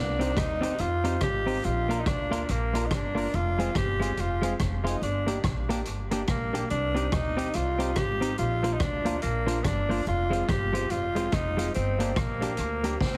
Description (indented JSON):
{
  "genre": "ska",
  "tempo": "142 BPM",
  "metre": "4/4",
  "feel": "swing 61% on 8ths",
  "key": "C minor",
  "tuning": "A4 = 437 Hz",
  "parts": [
    { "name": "raspy tenor saxophone", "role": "melody", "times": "0.0-13.2 s", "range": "Bb3 to G4", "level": "-32 LUFS", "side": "equal", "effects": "dub echo" },
    { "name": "upright bass", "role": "bass", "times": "0.0-13.2 s", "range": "F1 to F2", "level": "-33 LUFS", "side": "equal", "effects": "none" },
    { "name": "clean electric guitar", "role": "accompaniment", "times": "0.2-12.9 s", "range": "Ab3 to G4", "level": "-36 LUFS", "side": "equal", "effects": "spring reverb" },
    { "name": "bright upright piano", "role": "stabs", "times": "0.2-12.9 s", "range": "F3 to C5", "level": "-39 LUFS", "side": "equal", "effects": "none" },
    { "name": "street-band drum kit", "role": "drums", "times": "0.2-13.2 s", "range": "hi-hat, kick drum, rim click, snare drum, toms", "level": "-34 LUFS", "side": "equal", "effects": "dub echo" }
  ],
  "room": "light reverb",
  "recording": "heavily compressed radio sound, multiband compression",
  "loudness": "-28 LUFS",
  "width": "mono",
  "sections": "0.0-13.2 A section",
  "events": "drum fill 13.0",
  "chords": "0.0 Cm; 1.6 Bb; 3.3 Fm; 5.0 Gm; 6.7 Cm; 8.4 Bb; 10.1 Fm; 11.7 Gm"
}